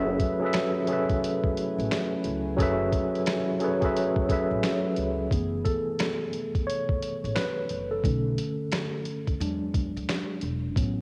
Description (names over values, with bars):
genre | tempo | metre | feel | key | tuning
lo-fi hip hop | 88 BPM | 4/4 | swing 65% on 16ths | F# minor | A4 = 439 Hz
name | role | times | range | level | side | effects
tine electric piano | accompaniment | 0.0-11.0 s | D3 to E5 | -30 LUFS | equal | cassette tape, low-pass filter
deep dark ambient pad | sustained chords | 0.1-5.3 s | F#3 to G#5 | -44 LUFS | equal | none
upright bass | bass | 0.0-11.0 s | E1 to E2 | -34 LUFS | equal | none
lo-fi sampler-style drum kit | drums | 0.2-11.0 s | finger snaps, hi-hat, kick drum, snare drum | -32 LUFS | equal | cassette tape
room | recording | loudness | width
light reverb, digital ambience | home recording on cassette | -28 LUFS | mono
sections
0.0-5.3 A section; 5.3-11.0 B section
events
tine electric piano solo 5.3-11.0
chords
0.0 F#m11; 8.0 Bm7; 9.4 E7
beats
0.54 1.22 1.90 | 2.58 3.26 3.95 4.63 | 5.31 5.99 6.67 7.36 | 8.04 8.72 9.40 10.08 | 10.76